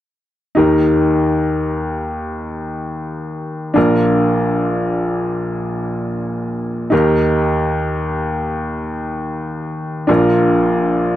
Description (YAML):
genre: pop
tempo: free time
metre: none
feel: none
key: unclear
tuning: A4 = 440 Hz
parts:
  - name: clear upright piano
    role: accompaniment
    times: 0.5-11.2 s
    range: Bb1 to Bb4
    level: -15 LUFS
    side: equal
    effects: none
room: light reverb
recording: dry, close 1970s-style studio recording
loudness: -15 LUFS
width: side -12 dB against mid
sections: 0.6-11.2 A section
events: none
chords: 0.6 Eb; 3.8 Bb; 6.9 Eb; 10.1 Bb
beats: free time